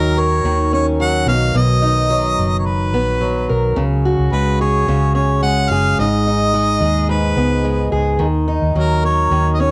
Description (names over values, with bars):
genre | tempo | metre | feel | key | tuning
acoustic pop | 108 BPM | 4/4 | straight | Eb minor | A4 = 440 Hz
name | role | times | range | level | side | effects
clear harmonica | melody | 0.0-9.7 s | Bb4 to Gb5 | -22 LUFS | equal | cassette tape
picked acoustic archtop guitar | accompaniment | 0.0-9.7 s | Ab2 to Bb4 | -20 LUFS | equal | cassette tape
vintage muted fingered electric bass | bass | 0.0-9.7 s | F#1 to Eb2 | -21 LUFS | equal | none
room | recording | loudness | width
light reverb, small room ambience | home recording on cassette | -16 LUFS | mono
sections
0.0-9.7 A section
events
none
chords
0.0 Ebm7; 1.3 Bmaj7; 3.8 Dbsus4; 6.0 Abm; 8.2 Ebm7